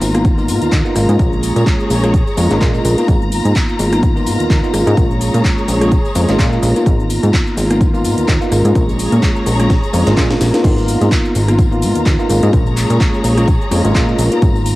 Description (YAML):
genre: filtered disco house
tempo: 127 BPM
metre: 4/4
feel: swing 56% on 16ths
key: G# dorian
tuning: A4 = 440 Hz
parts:
  - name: bell-like tine electric piano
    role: accompaniment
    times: 0.0-14.8 s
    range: G#3 to E#4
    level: -17 LUFS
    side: equal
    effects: phaser, vintage 12-bit sampler grit, sidechain pumping, cassette tape
  - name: warm studio string section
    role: sustained chords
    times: 0.0-14.8 s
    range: E#4 to A#5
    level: -23 LUFS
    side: left 1 dB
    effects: sidechain pumping, cassette tape
  - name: plucky analog bass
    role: bass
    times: 0.0-14.8 s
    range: G#1 to A#2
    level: -16 LUFS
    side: equal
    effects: sidechain pumping
  - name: house drum kit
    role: drums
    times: 0.0-14.8 s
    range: crash cymbal, handclaps, hi-hat, rim click, shaker, snare drum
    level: -23 LUFS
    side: equal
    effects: sidechain pumping on hats, cassette tape, sidechain pumping on perc, sidechain pumping on cymbals
  - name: tambourine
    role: percussion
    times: 0.0-14.8 s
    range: none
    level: -34 LUFS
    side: left 10 dB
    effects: sidechain pumping on perc
  - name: electronic kick drum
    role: drums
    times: 0.2-14.5 s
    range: none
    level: -15 LUFS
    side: equal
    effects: cassette tape
room: light reverb, digital ambience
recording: home recording on cassette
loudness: -11 LUFS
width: side -18 dB against mid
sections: 0.0-10.6 A section; 10.6-14.8 A section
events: drop 0.0-10.6, 10.6-14.8; drum fill 9.7-10.6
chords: 0.0 G#m69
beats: 0.25 0.72 | 1.20 1.67 2.14 2.61 | 3.08 3.56 4.03 4.50 | 4.97 5.45 5.92 6.39 | 6.86 7.34 7.81 8.28 | 8.75 9.23 9.70 10.17 | 10.64 11.12 11.59 12.06 | 12.53 13.01 13.48 13.95 | 14.42